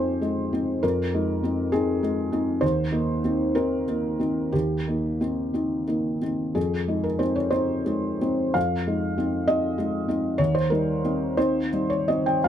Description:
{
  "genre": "neoclassical minimalist piano",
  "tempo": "54-67 BPM (dotted quarters)",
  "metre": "6/8",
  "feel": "rubato",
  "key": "F minor",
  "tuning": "A4 = 444 Hz",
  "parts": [
    { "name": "felt-muted upright piano", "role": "solo", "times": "0.0-12.5 s", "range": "Eb2 to G5", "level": "-22 LUFS", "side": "equal", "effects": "none" }
  ],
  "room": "little or no reverb",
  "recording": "close, detailed microphones",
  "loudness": "-22 LUFS",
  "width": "side -10 dB against mid",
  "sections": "0.0-12.5 A section",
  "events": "none",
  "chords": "0.0 Fm7; 2.6 Cm7/Eb; 6.6 Fm7; 10.4 Cm7/Eb",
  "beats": "| 0.83 1.73 | 2.62 3.55 | 4.53 5.54 | 6.56 7.53 | 8.55 9.47 | 10.39 11.36 | 12.43"
}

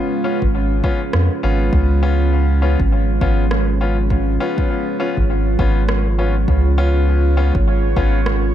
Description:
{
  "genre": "ambient dub",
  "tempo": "101 BPM",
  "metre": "4/4",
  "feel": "swing 60% on 16ths",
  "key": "Db mixolydian",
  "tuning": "A4 = 440 Hz",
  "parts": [
    { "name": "deep dark ambient pad", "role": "sustained chords", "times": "0.0-8.5 s", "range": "Ab3 to F5", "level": "-22 LUFS", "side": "right 3 dB", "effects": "chorus, built-in reverb" },
    { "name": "bright upright piano", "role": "stabs", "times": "0.0-8.2 s", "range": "Cb4 to F4", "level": "-23 LUFS", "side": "left 4 dB", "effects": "low-pass filter, dub echo" },
    { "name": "soft dub sub bass", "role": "bass", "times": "0.4-8.5 s", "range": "Ab1 to F2", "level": "-16 LUFS", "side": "equal", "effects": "none" },
    { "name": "electronic kick drum", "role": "drums", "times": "0.4-8.1 s", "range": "none", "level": "-20 LUFS", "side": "equal", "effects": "overdrive" },
    { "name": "electronic rim click", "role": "drums", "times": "1.1-8.4 s", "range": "none", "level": "-26 LUFS", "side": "right 1 dB", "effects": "overdrive" },
    { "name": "bubbling stepped-filter texture", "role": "texture", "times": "1.7-8.5 s", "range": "Db5", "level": "-33 LUFS", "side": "right 5 dB", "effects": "chorus, built-in reverb" }
  ],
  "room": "light reverb",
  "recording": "dark, warm production",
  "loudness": "-14 LUFS",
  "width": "side -11 dB against mid",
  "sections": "0.0-8.5 A section",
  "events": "none",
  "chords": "0.0 Db7",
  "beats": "0.54 1.14 | 1.73 2.32 2.92 3.51 | 4.11 4.70 5.29 5.89 | 6.48 7.08 7.67 8.26"
}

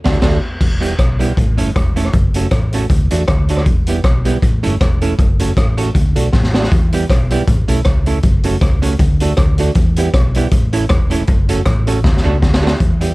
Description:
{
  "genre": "ska",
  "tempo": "157 BPM",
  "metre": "4/4",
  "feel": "swing 56% on 8ths",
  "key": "E dorian",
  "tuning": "A4 = 440 Hz",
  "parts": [
    { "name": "archtop guitar, miked and amplified", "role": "accompaniment", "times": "0.0-13.1 s", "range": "G3 to A4", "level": "-20 LUFS", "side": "right 4 dB", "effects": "none" },
    { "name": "hollow-body short-scale fingered electric bass", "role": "bass", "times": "0.1-13.1 s", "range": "E1 to E2", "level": "-17 LUFS", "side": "equal", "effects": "none" },
    { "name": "raw garage drum kit", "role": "drums", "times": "0.1-13.1 s", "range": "crash cymbal, hi-hat, kick drum, rim click, snare drum", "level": "-14 LUFS", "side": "equal", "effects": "none" }
  ],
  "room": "little or no reverb",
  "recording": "dark, warm production",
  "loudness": "-12 LUFS",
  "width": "side -22 dB against mid",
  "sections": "0.6-12.8 A section",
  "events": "band accent 0.0-0.6; drum fill 6.3-6.7, 12.0-12.8",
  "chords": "0.0 D; 0.6 Em; 1.4 A; 2.1 F#m; 2.9 D; 3.7 Em; 4.4 A; 5.2 F#m; 6.0 D; 6.7 Em; 7.5 A; 8.2 F#m; 9.0 D; 9.8 Em; 10.5 A; 11.3 F#m; 12.0 D",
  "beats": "0.23 | 0.61 0.99 1.37 1.75 | 2.14 2.52 2.90 3.28 | 3.67 4.05 4.43 4.81 | 5.19 5.57 5.95 6.33 | 6.72 7.10 7.48 7.86 | 8.24 8.62 9.00 9.38 | 9.76 10.14 10.52 10.90 | 11.28 11.66 12.04 12.43 | 12.81"
}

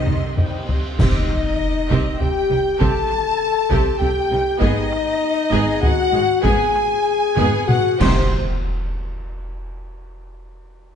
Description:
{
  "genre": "cinematic, epic orchestral film score",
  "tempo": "98 BPM",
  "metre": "3/4",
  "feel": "uneven beats",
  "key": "unclear",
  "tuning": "A4 = 440 Hz",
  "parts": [
    { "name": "clear chamber violin section", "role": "melody", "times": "0.0-8.4 s", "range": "C5 to A5", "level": "-31 LUFS", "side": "left 1 dB", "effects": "none" },
    { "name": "mellow hollow silver concert flute", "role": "second line", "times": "0.0-8.4 s", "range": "Eb5 to C6", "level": "-25 LUFS", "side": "left 1 dB", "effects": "none" },
    { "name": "warm symphonic violin section", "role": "second line", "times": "0.0-8.4 s", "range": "C5 to C6", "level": "-27 LUFS", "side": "left 2 dB", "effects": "none" },
    { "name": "rich symphonic viola section", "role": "accompaniment", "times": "0.0-8.4 s", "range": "G3 to Ab4", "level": "-26 LUFS", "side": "right 1 dB", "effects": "none" },
    { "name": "dark French horn section", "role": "sustained chords", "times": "0.0-8.3 s", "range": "C4 to A4", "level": "-22 LUFS", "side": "left 5 dB", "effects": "none" },
    { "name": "rich studio double bass section", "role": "bass", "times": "0.0-8.4 s", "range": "Ab1 to C2", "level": "-25 LUFS", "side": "right 4 dB", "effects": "none" },
    { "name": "warm symphonic cello section", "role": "bass", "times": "0.0-8.4 s", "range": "Ab2 to Eb3", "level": "-27 LUFS", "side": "right 3 dB", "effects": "none" },
    { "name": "taiko ensemble", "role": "drums", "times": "0.1-9.2 s", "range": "none", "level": "-21 LUFS", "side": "equal", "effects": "none" },
    { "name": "clash cymbals and concert bass drum", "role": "percussion", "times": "1.0-2.2, 8.0-9.2 s", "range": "none", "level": "-26 LUFS", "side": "equal", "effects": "none" },
    { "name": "sub drop and impact", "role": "sound effects", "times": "1.1-2.8, 8.0-9.9 s", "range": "none", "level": "-30 LUFS", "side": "equal", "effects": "none" }
  ],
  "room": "moderate scoring stage reverb, RT60 1.9 s",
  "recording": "dark, warm production, nothing above 10.8 kHz",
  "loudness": "-16 LUFS",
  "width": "side -8 dB against mid",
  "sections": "1.0-8.3 A section; 8.3-10.2 B section",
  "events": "drum fill 0.1-1.0, 7.4-8.3; band accent 1.0-1.6, 8.3-9.0; impact 1.0-2.8, 8.3-10.2",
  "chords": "0.0 Cm; 4.6 Abm; 8.0 Cm; 8.3 N.C.",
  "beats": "0.38 | 0.99 1.60 2.20 | 2.81 3.40 4.00 | 4.60 5.21 5.82 | 6.43 7.05 7.68 | 8.32 8.95 9.59"
}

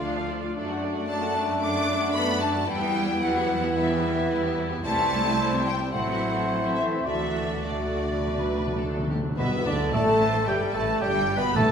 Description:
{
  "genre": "quick classical-period movement for symphony orchestra",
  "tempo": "102-114 BPM",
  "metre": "4/4",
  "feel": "rubato",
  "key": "G major",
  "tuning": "A4 = 440 Hz",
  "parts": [
    { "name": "rich studio violin section", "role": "melody", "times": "0.0-11.7 s", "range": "B4 to D6", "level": "-31 LUFS", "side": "left 3 dB", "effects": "none" },
    { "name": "mellow cor anglais", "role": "second line", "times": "0.0-11.7 s", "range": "B4 to A5", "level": "-33 LUFS", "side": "right 1 dB", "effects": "none" },
    { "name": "rich studio violin section", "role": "second line", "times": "0.0-11.7 s", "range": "E4 to F#5", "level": "-36 LUFS", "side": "equal", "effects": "none" },
    { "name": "silver concert flute", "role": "second line", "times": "0.0-11.7 s", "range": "B4 to D6", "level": "-33 LUFS", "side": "left 1 dB", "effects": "none" },
    { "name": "warm clarinet", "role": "second line", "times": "0.0-11.7 s", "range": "B3 to B4", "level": "-34 LUFS", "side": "left 2 dB", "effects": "none" },
    { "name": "rich studio viola section", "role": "accompaniment", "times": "0.0-11.7 s", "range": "D3 to F#4", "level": "-33 LUFS", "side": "right 1 dB", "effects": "none" },
    { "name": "warm bassoon", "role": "accompaniment", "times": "0.0-11.7 s", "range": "B2 to B3", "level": "-32 LUFS", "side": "right 1 dB", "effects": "none" },
    { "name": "dark French horn section", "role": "sustained chords", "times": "0.0-11.7 s", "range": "B2 to F#4", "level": "-31 LUFS", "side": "left 3 dB", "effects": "none" },
    { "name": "rich studio cello section", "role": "bass", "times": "0.0-11.7 s", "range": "D2 to D4", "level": "-33 LUFS", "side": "right 2 dB", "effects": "none" },
    { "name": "rich studio double bass section", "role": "bass", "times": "0.0-11.6 s", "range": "G1 to F#2", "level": "-32 LUFS", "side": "right 3 dB", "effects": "none" },
    { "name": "timpani", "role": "percussion", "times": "0.0-0.3, 7.1-11.7 s", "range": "G2 to D3", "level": "-33 LUFS", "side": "left 1 dB", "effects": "none" },
    { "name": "mellow trumpet section", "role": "stabs", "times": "9.4-11.7 s", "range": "B3 to B4", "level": "-30 LUFS", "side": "equal", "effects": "none" }
  ],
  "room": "wet recital hall reverb, RT60 1.3 s",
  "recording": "recorded in a church or concert hall",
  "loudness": "-23 LUFS",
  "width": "side -7 dB against mid",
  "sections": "0.0-9.4 A section; 9.4-11.7 B section",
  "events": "timpani fill 7.1-9.4",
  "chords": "0.0 Dm; 0.6 D/F#; 2.7 Em; 4.8 C; 5.9 Am; 7.1 D; 9.4 G",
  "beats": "0.03 | 0.56 1.09 1.62 2.15 | 2.68 3.22 3.76 4.30 | 4.85 5.39 5.93 6.49 | 7.07 7.65 8.24 8.81 | 9.38 9.94 10.48 11.02 | 11.56"
}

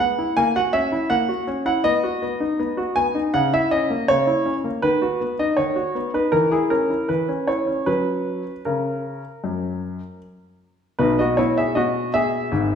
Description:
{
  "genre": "classical-period piano sonatina",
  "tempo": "80 BPM",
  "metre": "4/4",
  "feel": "rubato",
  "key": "B major",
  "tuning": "A4 = 436 Hz",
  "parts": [
    { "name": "warm concert grand piano", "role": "solo", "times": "0.0-12.8 s", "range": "G#1 to G#5", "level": "-19 LUFS", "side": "equal", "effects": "none" }
  ],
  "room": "wet recital hall reverb, RT60 1.5 s",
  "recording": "recorded in a church or concert hall",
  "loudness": "-19 LUFS",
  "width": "side -7 dB against mid",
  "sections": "0.0-11.0 A section; 11.0-12.8 B section",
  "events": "none",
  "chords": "0.4 F#7/A#; 1.8 B; 3.3 A#dim/C#; 4.8 B/D#; 6.3 C#m/E; 7.9 F#; 11.0 B",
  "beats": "0.36 1.10 | 1.84 2.58 3.33 4.08 | 4.83 5.57 6.33 7.08 | 7.86 8.66 9.44 10.21 | 10.99 11.76 12.52"
}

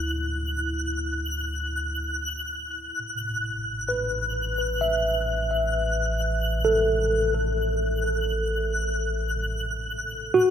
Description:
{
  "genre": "ambient",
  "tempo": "65 BPM",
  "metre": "4/4",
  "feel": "straight",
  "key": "unclear",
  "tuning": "A4 = 440 Hz",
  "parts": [
    { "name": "mellow tine electric piano", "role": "arpeggios", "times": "0.0-10.5 s", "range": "E4 to E5", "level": "-26 LUFS", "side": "equal", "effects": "medium stereo tremolo, ping-pong delay" },
    { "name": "warm sub bass", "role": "bass", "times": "0.0-10.5 s", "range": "A1 to D2", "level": "-29 LUFS", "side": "equal", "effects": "none" },
    { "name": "twinkling granular texture", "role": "texture", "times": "0.0-10.5 s", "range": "F#6", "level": "-30 LUFS", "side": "left 1 dB", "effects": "built-in reverb, ensemble chorus" }
  ],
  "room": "wet huge ambient reverb, RT60 8.4 s",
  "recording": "dreamy mix soaked in reverb",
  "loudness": "-24 LUFS",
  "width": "side -8 dB against mid",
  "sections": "0.0-10.5 A section",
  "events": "fade-in on sub bass 0.0-10.5",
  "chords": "0.0 D; 3.0 A5",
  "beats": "0.20 1.13 2.05 | 2.97 3.90 4.82 5.74 | 6.67 7.59 8.51 9.43 | 10.36"
}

